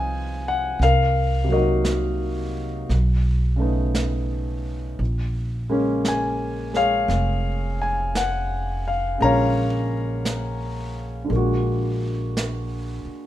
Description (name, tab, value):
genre	jazz ballad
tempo	57 BPM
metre	4/4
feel	swing 66% on 8ths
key	Bb minor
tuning	A4 = 440 Hz
part	warm concert grand piano	accompaniment	0.0-13.3 s	C3 to Bb5	-23 LUFS	left 2 dB	none
part	upright bass	bass	0.0-13.1 s	F1 to C2	-24 LUFS	right 1 dB	none
part	vintage brush drum kit	drums	0.8-13.3 s	brushed snare drum, hi-hat, snare drum	-31 LUFS	right 2 dB	none
room	light reverb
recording	minimal, uncompressed stereo recording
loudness	-20 LUFS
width	side -13 dB against mid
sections	0.0-13.3 A section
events	none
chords	0.0 Fm7; 0.8 Cm7b5; 2.9 B9; 5.0 Bbm7; 11.3 Bb7b13